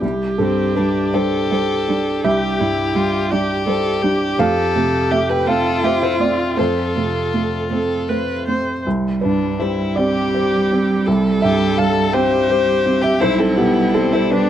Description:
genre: neoclassical piano and strings.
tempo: 55 BPM (dotted quarters).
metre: 6/8.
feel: rubato.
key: C major.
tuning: A4 = 440 Hz.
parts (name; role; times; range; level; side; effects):
warm cello; second line; 0.0-14.5 s; G3 to A3; -24 LUFS; right 5 dB; none.
felt-muted upright piano; accompaniment; 0.0-14.5 s; B1 to G5; -19 LUFS; right 1 dB; none.
rich viola; accompaniment; 0.0-14.5 s; D4 to C5; -22 LUFS; right 2 dB; none.
rich violin; melody; 0.4-14.5 s; B3 to C5; -21 LUFS; left 6 dB; none.
room: light reverb.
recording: dry, close 1970s-style studio recording.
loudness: -15 LUFS.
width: side -10 dB against mid.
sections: 0.0-14.5 A section.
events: none.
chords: 0.0 Csus2; 4.4 F; 8.9 Csus2; 13.2 G/B.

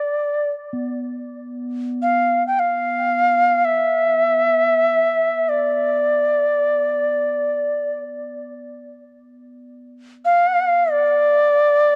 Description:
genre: world meditative, free-time meditation music.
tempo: free time.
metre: none.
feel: none.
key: D dorian.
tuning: A4 = 440 Hz.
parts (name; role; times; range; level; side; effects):
Native American-style cedar flute; melody; 0.0-12.0 s; D5 to G5; -19 LUFS; equal; analog delay.
quartz singing bowl; texture; 0.7-8.7 s; B3; -34 LUFS; equal; none.
room: wet booth ambience, RT60 0.2 s.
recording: home recording on cassette.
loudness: -19 LUFS.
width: mono.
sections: 0.0-12.0 A section.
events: none.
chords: none.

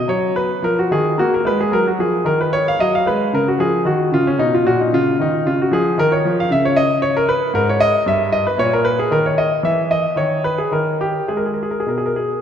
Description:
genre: classical, baroque-style suite movement for grand piano.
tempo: 100-117 BPM.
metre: 3/4.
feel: rubato.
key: Eb minor, G# minor from 6.5 s.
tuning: A4 = 440 Hz.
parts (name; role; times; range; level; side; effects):
clear concert grand piano; solo; 0.0-12.4 s; G2 to F5; -15 LUFS; equal; none.
room: wet church reverb, RT60 2.7 s.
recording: none.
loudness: -15 LUFS.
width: side -8 dB against mid.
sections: 0.1-12.4 A section.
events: none.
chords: 0.1 Ebm; 3.3 Bbm/Db; 4.9 Dbadd9; 6.5 G#madd11; 8.0 D#/G; 9.6 N.C.; 11.3 G#m.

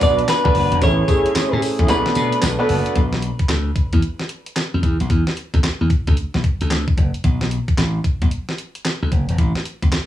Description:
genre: R&B, new jack swing.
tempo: 112 BPM.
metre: 4/4.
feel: swing 64% on 16ths.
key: B dorian.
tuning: A4 = 435 Hz.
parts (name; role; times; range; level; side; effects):
direct-recorded clean electric guitar; melody; 0.0-2.4 s; B4 to D5; -21 LUFS; left 1 dB; spring reverb, cassette tape, tape echo.
warm concert grand piano; accompaniment; 0.0-3.0 s; A3 to C#5; -22 LUFS; right 2 dB; cassette tape.
warm analog pad; sustained chords; 0.0-2.9 s; F#3 to G#4; -27 LUFS; right 2 dB; chorus, cassette tape.
mellow synth brass; stabs; 0.0-2.8 s; A3 to B4; -26 LUFS; left 1 dB; chorus, cassette tape, tape echo.
slap bass; bass; 0.0-10.0 s; E1 to B2; -20 LUFS; equal; none.
clean 12-bit digital drum machine; drums; 0.0-10.1 s; handclaps, hi-hat, kick drum, snare drum, tambourine; -19 LUFS; equal; none.
room: little or no reverb.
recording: home recording on cassette, small room ambience.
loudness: -16 LUFS.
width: side -12 dB against mid.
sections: 0.0-3.0 A section; 3.0-10.1 B section.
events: kick muted 1.9-3.0.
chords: 0.0 Bm; 0.8 Amaj7; 1.9 Bm7; 3.0 Bm; 4.8 E5; 7.2 B5; 9.4 A.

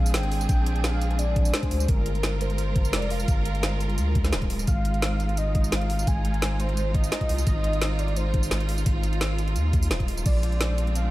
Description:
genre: liquid drum and bass.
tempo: 172 BPM.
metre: 4/4.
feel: straight.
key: F dorian.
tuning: A4 = 440 Hz.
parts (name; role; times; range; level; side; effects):
warm velvety synth lead; melody; 0.0-11.1 s; Bb4 to Ab5; -33 LUFS; left 1 dB; chorus, analog delay.
clear studio string section; sustained chords; 0.0-11.1 s; Ab3 to Bb4; -32 LUFS; equal; none.
saturated sub bass; bass; 0.0-11.1 s; D1 to Eb2; -25 LUFS; equal; none.
drum and bass drum kit; drums; 0.1-11.0 s; crash cymbal, hi-hat, snare drum, tambourine; -31 LUFS; equal; overdrive.
electronic kick drum; drums; 0.5-10.3 s; none; -24 LUFS; equal; overdrive.
room: light reverb, digital ambience.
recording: none.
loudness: -22 LUFS.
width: side -17 dB against mid.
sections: 0.0-11.1 A section.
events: none.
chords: 0.0 Bb13; 1.9 Gm7; 4.7 Fm7/Ab; 10.3 Bb9.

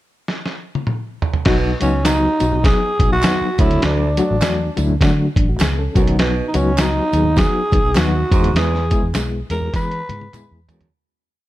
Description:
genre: uptempo 1960s-style soul.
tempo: 101 BPM.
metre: 4/4.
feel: swing 60% on 8ths.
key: B major.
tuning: A4 = 440 Hz.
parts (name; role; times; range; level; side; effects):
lo-fi sampler-style drum kit; drums; 0.3-10.9 s; crash cymbal, hi-hat, kick drum, snare drum, toms; -19 LUFS; equal; none.
bright reed electric piano; accompaniment; 1.5-10.9 s; F#3 to A4; -22 LUFS; left 3 dB; fast tremolo.
raspy baritone saxophone; riff; 1.5-10.9 s; D2 to B2; -26 LUFS; right 5 dB; none.
vintage muted fingered electric bass; bass; 1.5-10.9 s; A1 to E3; -20 LUFS; equal; tube saturation.
growling tenor saxophone; melody; 1.8-10.7 s; C#4 to B4; -20 LUFS; right 1 dB; none.
congas; percussion; 1.8-10.9 s; none; -32 LUFS; right 1 dB; none.
tambourine and handclaps; percussion; 1.8-10.8 s; none; -33 LUFS; right 3 dB; none.
room: little or no reverb.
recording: dark, warm production.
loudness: -15 LUFS.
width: side -15 dB against mid.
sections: 0.0-1.5 pickup bar; 1.5-10.9 verse.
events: drum fill 0.3-1.5, 9.7-10.9; fade-out 8.6-10.9.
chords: 0.0 N.C.; 1.5 B; 3.5 D; 5.9 B; 8.3 E.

